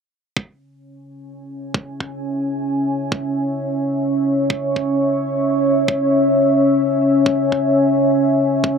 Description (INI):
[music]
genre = half-time drum and bass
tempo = free time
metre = none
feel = none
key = C# minor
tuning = A4 = 440 Hz
[part]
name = deep dark ambient pad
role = sustained chords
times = 1.6-8.8 s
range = C#4 to C#6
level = -16 LUFS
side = equal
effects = chorus, built-in reverb, sidechain pumping
[part]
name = electronic kick drum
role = drums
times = 0.4-8.7 s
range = none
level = -22 LUFS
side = right 1 dB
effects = high-pass filter on kick
[sound]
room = wet lush hall reverb, RT60 1.6 s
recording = bright 1980s-style digital production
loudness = -16 LUFS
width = side -6 dB against mid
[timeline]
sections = 0.4-8.8 A section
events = none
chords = 0.4 C#m